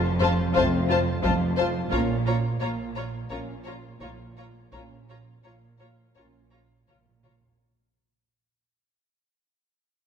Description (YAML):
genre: cinematic, suspense film score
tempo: 85 BPM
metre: 4/4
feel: straight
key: Bb harmonic minor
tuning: A4 = 440 Hz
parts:
  - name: clear symphonic cello section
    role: riff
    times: 0.0-7.4 s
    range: F2 to Bb3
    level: -32 LUFS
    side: right 1 dB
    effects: none
  - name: clear symphonic double bass section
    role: bass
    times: 0.0-7.5 s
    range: F1 to Bb1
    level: -31 LUFS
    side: right 3 dB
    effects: none
  - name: dark symphonic cello section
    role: bass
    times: 0.0-7.5 s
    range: F2 to Bb2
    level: -30 LUFS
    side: right 1 dB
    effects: none
  - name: warm symphonic violin section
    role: melody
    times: 0.2-7.3 s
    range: A5 to Bb5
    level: -33 LUFS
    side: left 4 dB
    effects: none
  - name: warm symphonic violin section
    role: second line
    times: 0.2-7.3 s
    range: C5 to Db5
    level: -29 LUFS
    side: left 5 dB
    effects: none
  - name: rich symphonic viola section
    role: accompaniment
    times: 0.2-7.3 s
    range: F4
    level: -32 LUFS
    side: left 1 dB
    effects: none
  - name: mellow French horn section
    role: sustained chords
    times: 0.6-6.4 s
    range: A3 to Db4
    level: -34 LUFS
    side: left 2 dB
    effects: none
  - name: taiko ensemble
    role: drums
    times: 0.6-7.7 s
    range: none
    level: -35 LUFS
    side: equal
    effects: none
room: wet scoring stage reverb, RT60 1.9 s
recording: none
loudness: -22 LUFS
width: side -7 dB against mid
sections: 0.0-7.6 A section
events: fade-out 0.0-7.6; drum fill 6.9-7.6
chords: 0.0 F; 1.9 Bbm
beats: 0.56 1.25 | 1.93 2.61 3.30 4.00 | 4.72 5.44 6.15 6.87